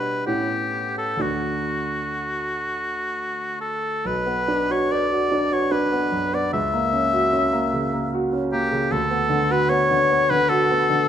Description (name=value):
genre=classical, romantic duo for oboe and grand piano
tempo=59-76 BPM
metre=3/4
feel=rubato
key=D major, B minor from 4.1 s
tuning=A4 = 440 Hz
part: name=clear oboe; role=melody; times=0.0-11.1 s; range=F#4 to E5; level=-21 LUFS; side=left 2 dB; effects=none
part: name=clear concert grand piano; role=accompaniment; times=0.0-11.1 s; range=B1 to B4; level=-24 LUFS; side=right 1 dB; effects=none
room=moderate recital hall reverb, RT60 1.4 s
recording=minimal, uncompressed stereo recording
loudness=-20 LUFS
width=side -9 dB against mid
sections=0.0-4.1 A section; 4.1-11.1 B section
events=none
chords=0.3 A9; 1.2 D; 4.1 Bm; 6.5 F#7/C#; 8.9 Bm/D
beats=0.27 | 1.22 2.19 3.13 | 4.07 4.91 5.71 | 6.53 7.34 8.14 | 8.92 9.71 10.51